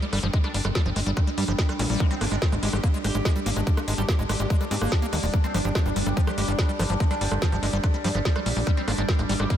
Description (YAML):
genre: psychedelic trance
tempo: 144 BPM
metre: 4/4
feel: straight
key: G phrygian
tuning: A4 = 440 Hz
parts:
  - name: overtone-sweeping drone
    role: sustained chords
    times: 0.0-9.6 s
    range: G3 to D4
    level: -30 LUFS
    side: equal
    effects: chorus, built-in reverb, vintage 12-bit sampler grit, sidechain pumping
  - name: liquid acid bass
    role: riff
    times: 0.0-9.5 s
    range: F3 to Eb4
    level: -30 LUFS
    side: equal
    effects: chorus, auto-pan, sidechain pumping, analog delay
  - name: drum and bass drum kit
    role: drums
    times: 0.0-9.6 s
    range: hi-hat, rim click, snare drum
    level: -31 LUFS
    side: equal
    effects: none
  - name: tight sequencer bass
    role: bass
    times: 0.1-9.5 s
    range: Eb1 to Ab2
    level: -26 LUFS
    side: equal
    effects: tube saturation
  - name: electronic kick drum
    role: drums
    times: 0.3-9.6 s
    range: none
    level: -23 LUFS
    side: equal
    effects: none
  - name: metallic wobble bass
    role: second line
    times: 0.4-9.5 s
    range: C4 to G4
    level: -39 LUFS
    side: right 2 dB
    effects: none
  - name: zap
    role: sound effects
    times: 1.8-1.9 s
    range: none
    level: barely audible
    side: none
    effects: none
room: light reverb, digital ambience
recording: none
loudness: -22 LUFS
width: side -10 dB against mid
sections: 0.0-9.6 A section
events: none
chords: 0.0 G5; 2.0 Ab5; 5.3 G5; 8.7 Ab5